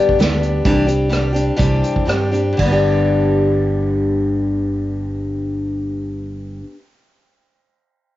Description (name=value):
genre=folk rock and heartland rock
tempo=116-134 BPM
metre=4/4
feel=straight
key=G major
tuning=A4 = 442 Hz
part: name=picked steel-string acoustic guitar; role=accompaniment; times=0.0-6.8 s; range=G2 to G4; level=-17 LUFS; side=left 2 dB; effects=cassette tape
part: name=unplugged drum kit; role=drums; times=0.1-2.7 s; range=hi-hat, kick drum, ride cymbal, rim click, snare drum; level=-21 LUFS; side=right 1 dB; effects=cassette tape
part: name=fingered electric bass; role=bass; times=0.2-6.6 s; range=G1 to G2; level=-21 LUFS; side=right 1 dB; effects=none
room=little or no reverb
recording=home recording on cassette, nothing above 7.6 kHz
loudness=-15 LUFS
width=side -15 dB against mid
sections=0.0-2.6 A section; 2.6-6.7 B section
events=slowing down 0.0-2.6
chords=0.0 G; 0.7 Cadd9; 2.6 G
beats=0.20 | 0.65 1.12 1.59 2.09 | 2.59 3.11 3.62 4.14 | 4.66 5.17 5.69 6.21